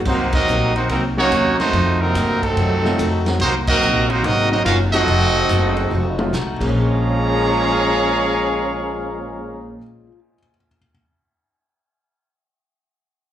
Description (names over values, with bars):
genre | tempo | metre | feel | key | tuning
jazz, big band swing | 143 BPM | 4/4 | swing 66% on 8ths | Bb minor | A4 = 440 Hz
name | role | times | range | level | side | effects
upright bass | bass | 0.0-9.7 s | F1 to G2 | -22 LUFS | equal | none
bright trumpet section | melody | 0.1-9.7 s | Gb3 to Bb5 | -19 LUFS | right 1 dB | plate reverb, slapback echo
bright trombone section | second line | 0.1-9.7 s | Bb2 to F4 | -24 LUFS | right 2 dB | plate reverb, slapback echo
picked acoustic archtop guitar | accompaniment | 0.1-10.2 s | Bb2 to Gb4 | -29 LUFS | left 7 dB | plate reverb, slapback echo
warm upright piano | accompaniment | 0.1-10.9 s | Bb2 to C7 | -27 LUFS | left 2 dB | plate reverb, slapback echo
vintage drum kit | drums | 0.1-6.7 s | crash cymbal, hi-hat, kick drum, ride cymbal, snare drum, toms | -28 LUFS | equal | none
room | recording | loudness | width
light reverb | live gig heard through the venue's PA, club reverb | -15 LUFS | side -11 dB against mid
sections
0.1-6.7 A section; 6.7-10.1 B section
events
band accent 0.3, 3.6; drum fill 5.9-6.7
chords
0.1 Cm7b5; 1.7 F7b9; 3.4 Cm7b5; 5.1 F7b9; 6.5 Bbm7